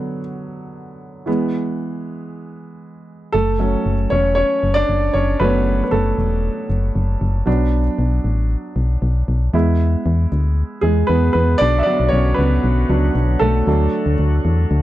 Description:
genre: piano-driven pop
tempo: 116 BPM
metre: 4/4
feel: straight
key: unclear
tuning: A4 = 440 Hz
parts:
  - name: warm concert grand piano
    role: accompaniment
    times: 0.0-14.8 s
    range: D3 to E5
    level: -20 LUFS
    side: right 1 dB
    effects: none
  - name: solid FM bass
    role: bass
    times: 3.3-14.8 s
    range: E1 to E2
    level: -17 LUFS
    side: left 1 dB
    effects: none
  - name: bright tonewheel organ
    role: sustained chords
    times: 11.6-14.8 s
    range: D3 to F#4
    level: -26 LUFS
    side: left 4 dB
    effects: overdrive, slow rotary speaker
room: little or no reverb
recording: dry, close 1970s-style studio recording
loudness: -15 LUFS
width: side -15 dB against mid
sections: 0.0-11.6 A section; 11.6-14.8 B section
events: grand piano solo 0.0-11.6, 11.6-14.8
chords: 0.0 Bm; 1.3 E; 3.3 F#m; 7.5 Bm; 9.5 E; 11.6 Bm; 13.7 D

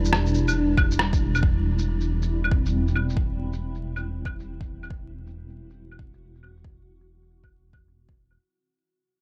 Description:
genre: future garage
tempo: 138 BPM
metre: 4/4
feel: swing 63% on 16ths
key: unclear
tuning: A4 = 440 Hz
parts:
  - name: bell-like tine electric piano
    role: accompaniment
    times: 0.0-1.4 s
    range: D4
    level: -39 LUFS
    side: equal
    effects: analog chorus, sidechain pumping, delay
  - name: granular cloud pad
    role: sustained chords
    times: 0.0-8.4 s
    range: G3 to F#4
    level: -32 LUFS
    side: equal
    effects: built-in reverb, sidechain pumping
  - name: dark detuned saw bass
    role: bass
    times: 0.0-8.4 s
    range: E1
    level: -29 LUFS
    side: equal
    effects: tube saturation, sidechain pumping
  - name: electronic shaker, rim click and claves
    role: drums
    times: 0.0-8.4 s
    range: none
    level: -29 LUFS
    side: equal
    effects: overdrive, low-pass filter on perc, small room ambience, low-pass filter on snare
  - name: electronic kick drum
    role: drums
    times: 0.8-8.2 s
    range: none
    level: -26 LUFS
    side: equal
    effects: small room ambience
room: light reverb, digital ambience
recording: vinyl crackle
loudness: -24 LUFS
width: mono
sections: 0.0-8.4 A section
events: fade-out 0.0-8.4; filter sweep on drum 0.0-8.4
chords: 0.0 Em7; 1.4 C/E

